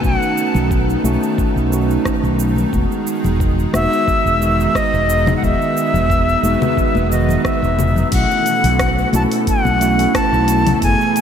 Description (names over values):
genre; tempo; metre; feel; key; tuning
sunset chillout; 89 BPM; 4/4; swing 54% on 16ths; unclear; A4 = 440 Hz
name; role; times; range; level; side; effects
silver concert flute; melody; 0.0-11.2 s; D#5 to A5; -18 LUFS; left 1 dB; digital delay
mellow tine electric piano; accompaniment; 0.0-11.2 s; D#3 to G#4; -20 LUFS; moving between left 2 dB and right 5 dB; auto-pan, digital delay
lush unison pad; sustained chords; 0.0-11.2 s; B2 to A4; -23 LUFS; right 2 dB; chorus
mellow fretless electric bass; bass; 0.0-10.9 s; E1 to B1; -18 LUFS; equal; none
deep house drum kit; drums; 0.0-11.2 s; cabasa, congas, crash cymbal, hi-hat, rim click; -26 LUFS; left 2 dB; none
electronic kick drum; drums; 0.0-11.0 s; none; -21 LUFS; equal; none
congas; percussion; 0.5-10.8 s; none; -28 LUFS; left 3 dB; none
room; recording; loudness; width
moderate lush hall reverb, RT60 2.7 s; bright 1980s-style digital production; -14 LUFS; side -8 dB against mid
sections
0.0-8.1 A section; 8.1-11.2 B section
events
none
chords
0.0 B7; 2.7 Emaj7; 8.1 B7sus4